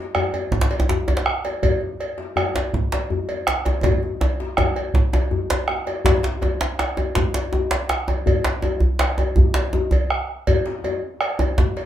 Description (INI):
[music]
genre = west african traditional, West African drum ensemble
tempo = 108 BPM (dotted quarters)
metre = 12/8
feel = straight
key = none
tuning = none
[part]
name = bombo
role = percussion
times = 0.1-11.8 s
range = none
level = -22 LUFS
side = right 2 dB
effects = none
[part]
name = cowbell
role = percussion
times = 0.1-11.9 s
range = none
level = -29 LUFS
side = right 1 dB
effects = none
[part]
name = djembe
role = percussion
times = 0.2-11.9 s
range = none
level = -25 LUFS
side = left 4 dB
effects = none
[part]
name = djembe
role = percussion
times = 0.5-11.8 s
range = none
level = -21 LUFS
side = equal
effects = none
[sound]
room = moderate small room reverb, RT60 0.5 s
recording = minimal, uncompressed stereo recording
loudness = -19 LUFS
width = side -11 dB against mid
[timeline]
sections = 0.0-6.1 A section; 6.1-11.9 B section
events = drum fill 3.8-6.1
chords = none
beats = 0.52 1.07 | 1.63 2.18 2.73 3.29 | 3.84 4.39 4.95 5.50 | 6.05 6.61 7.16 7.71 | 8.27 8.82 9.37 9.92 | 10.48 11.03 11.58